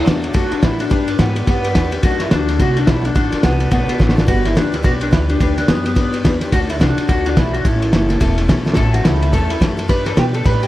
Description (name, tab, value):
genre	rockabilly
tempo	214 BPM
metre	4/4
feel	swing 60% on 8ths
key	D major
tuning	A4 = 440 Hz
part	electric guitar through a small old amp	melody	0.0-10.7 s	B3 to B4	-20 LUFS	left 1 dB	analog chorus, analog delay
part	picked steel-string acoustic guitar	accompaniment	0.0-10.7 s	A2 to B4	-25 LUFS	left 3 dB	none
part	upright bass	bass	0.0-10.7 s	E1 to B2	-19 LUFS	equal	none
part	cloth-damped thuddy drum kit	drums	0.1-10.7 s	kick drum, ride cymbal, snare drum	-16 LUFS	equal	none
room	light reverb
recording	none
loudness	-13 LUFS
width	side -15 dB against mid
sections	0.0-10.7 A section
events	drum fill 4.0, 8.6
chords	0.0 D; 0.9 G; 2.0 D; 4.3 G; 6.5 D; 7.6 A; 9.9 G